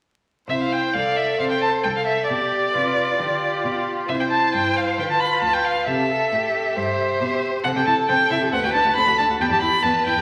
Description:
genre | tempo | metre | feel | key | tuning
quick classical-period movement for string quartet | 135 BPM | 4/4 | rubato | C major | A4 = 443 Hz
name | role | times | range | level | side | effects
rich violin | melody | 0.5-10.2 s | D5 to B5 | -22 LUFS | equal | none
rich violin | second line | 0.5-10.2 s | G4 to D5 | -29 LUFS | equal | none
warm viola | accompaniment | 0.5-10.2 s | B3 to A4 | -29 LUFS | equal | none
rich cello | bass | 0.5-10.2 s | C2 to D3 | -32 LUFS | equal | none
room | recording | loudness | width
wet scoring stage reverb, RT60 1.6 s | vinyl crackle | -21 LUFS | mono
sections
0.5-10.2 A section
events
none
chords
0.5 C; 1.4 C6; 2.3 G7/B; 4.1 C; 5.0 Bdim/D; 5.9 C; 7.6 Am7/C; 8.5 D; 9.4 Em

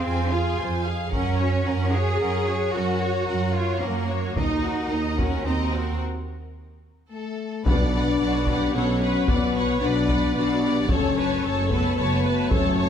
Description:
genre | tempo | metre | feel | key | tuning
cinematic, epic orchestral film score | 111 BPM | 3/4 | straight | B minor from 7.7 s | A4 = 438 Hz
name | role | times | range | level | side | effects
clear symphonic violin section | melody | 0.0-12.9 s | A4 to Bb5 | -33 LUFS | left 4 dB | none
warm symphonic violin section | second line | 0.0-12.9 s | Ab4 to A5 | -31 LUFS | left 3 dB | none
rich symphonic viola section | accompaniment | 0.0-12.9 s | Db4 to D5 | -32 LUFS | right 1 dB | none
dark French horn section | sustained chords | 0.0-12.9 s | A3 to F5 | -28 LUFS | left 5 dB | none
rich symphonic cello section | bass | 0.0-12.9 s | F#2 to Ab4 | -28 LUFS | right 2 dB | none
rich symphonic double bass section | bass | 0.1-12.9 s | F#1 to Gb2 | -27 LUFS | right 3 dB | none
taiko ensemble | drums | 1.1-12.9 s | none | -26 LUFS | equal | none
clear trombone section | sustained chords | 7.7-12.9 s | F#3 to B3 | -32 LUFS | right 2 dB | none
room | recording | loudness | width
moderate scoring stage reverb, RT60 1.9 s | none | -21 LUFS | side -8 dB against mid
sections
0.0-7.7 A section; 7.7-12.9 A section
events
break 6.0-7.7; drum fill 6.8-7.7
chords
0.0 Fm; 1.1 Gb; 4.4 Ebm; 6.0 N.C.; 7.7 Bm; 10.9 F#m

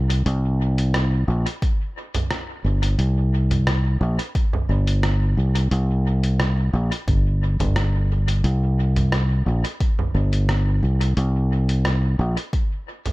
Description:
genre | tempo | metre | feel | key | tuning
ambient dub | 88 BPM | 4/4 | swing 53% on 16ths | unclear | A4 = 440 Hz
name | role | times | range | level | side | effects
fingered electric bass | bass | 0.0-12.4 s | G1 to C2 | -18 LUFS | equal | none
lo-fi sampler-style drum kit | drums | 0.1-13.1 s | congas, hi-hat, rim click | -27 LUFS | right 1 dB | studio reverb, dub echo
electronic kick drum | drums | 1.6-12.7 s | none | -21 LUFS | equal | overdrive, studio reverb
room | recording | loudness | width
little or no reverb | echo-heavy mix | -18 LUFS | side -20 dB against mid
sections
0.0-13.1 A section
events
fade-out 12.1-13.1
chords
none

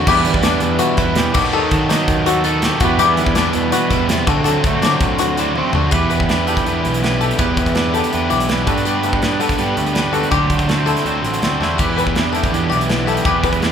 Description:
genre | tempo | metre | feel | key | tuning
math rock and midwest emo | 164 BPM | 4/4 | straight | E minor | A4 = 440 Hz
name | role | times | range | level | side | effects
twangy electric guitar | accompaniment | 0.0-13.7 s | E2 to B4 | -20 LUFS | right 6 dB | spring reverb
bluegrass banjo | arpeggios | 0.0-13.7 s | D4 to B4 | -21 LUFS | left 6 dB | none
crunchy overdriven guitar | riff | 0.0-13.7 s | D3 to C5 | -20 LUFS | left 1 dB | none
fuzz picked electric bass | bass | 0.0-13.7 s | A1 to E3 | -23 LUFS | equal | overdrive
modern studio drum kit | drums | 0.1-13.7 s | crash cymbal, hi-hat, kick drum, snare drum, splash cymbal, toms | -20 LUFS | equal | none
room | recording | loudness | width
light reverb | band playing live in one room | -14 LUFS | side -8 dB against mid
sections
0.0-5.9 A section; 5.9-13.7 B section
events
drum fill 5.6-5.9, 11.6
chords
0.1 Em9; 1.4 B7b13/D#; 2.8 Em9; 4.3 D7; 5.9 Em7; 8.7 Gmaj7; 10.3 D9sus4; 11.8 Em7

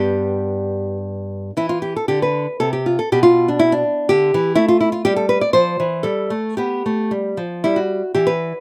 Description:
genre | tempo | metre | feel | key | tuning
classical, baroque-style dance for nylon-string guitar | 106-128 BPM | 3/4 | rubato | C major | A4 = 440 Hz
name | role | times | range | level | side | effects
nylon-string guitar | solo | 0.0-8.6 s | G2 to D5 | -18 LUFS | equal | none
room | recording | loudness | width
light reverb | none | -18 LUFS | mono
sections
0.0-1.6 A section; 1.6-8.6 A section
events
none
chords
0.0 G; 1.6 C; 3.1 G/B; 4.6 Am; 6.1 Gadd9; 7.1 Fsus2; 7.7 G5

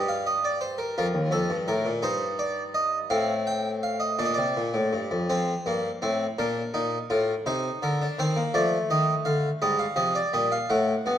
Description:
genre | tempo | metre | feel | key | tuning
classical, baroque-style 3-part fugue for harpsichord | 56 BPM (dotted quarters) | 6/8 | straight | unclear | A4 = 439 Hz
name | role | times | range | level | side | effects
harpsichord | solo | 0.0-11.2 s | Eb2 to G5 | -23 LUFS | equal | none
room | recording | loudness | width
wet recital hall reverb, RT60 1.4 s | worn, warbling old tape, cassette tape, warbly pitch drift | -24 LUFS | side -10 dB against mid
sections
0.0-5.3 A section; 5.3-11.2 B section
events
none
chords
0.0 Eb/G; 1.0 Bb5; 2.0 Cm/G; 3.1 F7/A; 4.2 Bb; 5.3 Fadd9; 6.4 Bbmaj7; 7.5 Cm7; 8.5 F7; 9.6 Fm/Ab

